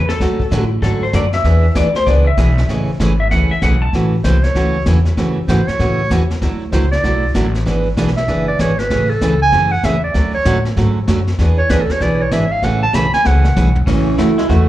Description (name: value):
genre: country, western swing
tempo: 193 BPM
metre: 4/4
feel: swing 63% on 8ths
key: A major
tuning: A4 = 439 Hz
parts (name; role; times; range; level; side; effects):
- clean lap steel guitar; second line; 0.0-3.9 s; A4 to A5; -19 LUFS; left 3 dB; plate reverb, slapback echo
- upright bass; bass; 0.0-14.7 s; F#1 to A2; -16 LUFS; equal; none
- vintage brush drum kit; drums; 0.1-14.7 s; brushed snare drum, crash cymbal, hi-hat, kick drum, snare drum, toms; -23 LUFS; left 1 dB; slapback echo
- picked steel-string acoustic guitar; accompaniment; 0.2-14.7 s; C#3 to G#4; -19 LUFS; right 2 dB; plate reverb, slapback echo
- clear clarinet; second line; 4.2-14.7 s; E3 to B5; -18 LUFS; right 2 dB; plate reverb, slapback echo
- pedal steel guitar; melody; 13.9-14.7 s; E3 to F#4; -16 LUFS; right 1 dB; plate reverb, slapback echo
room: light reverb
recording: live gig heard through the venue's PA, club reverb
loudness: -13 LUFS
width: side -14 dB against mid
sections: 0.0-3.9 A section; 3.9-13.9 A section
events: electric slide guitar solo 0.0-3.9; clarinet solo 3.9-13.9; drum fill 13.3-13.9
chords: 0.2 Dmaj7; 1.4 E7; 2.7 Amaj7; 3.9 A6; 5.2 F#m7; 6.4 Dadd9; 7.7 E7; 8.9 Amaj7; 10.1 Dmaj7; 11.4 E7; 12.6 Amaj7; 13.9 A6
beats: | 0.20 0.51 0.82 1.14 | 1.45 1.76 2.07 2.38 | 2.69 3.00 3.31 3.62 | 3.93 4.24 4.55 4.86 | 5.17 5.49 5.80 6.11 | 6.42 6.73 7.04 7.35 | 7.66 7.97 8.28 8.59 | 8.90 9.21 9.53 9.84 | 10.15 10.46 10.77 11.08 | 11.39 11.70 12.01 12.32 | 12.63 12.94 13.25 13.56 | 13.87 14.18 14.49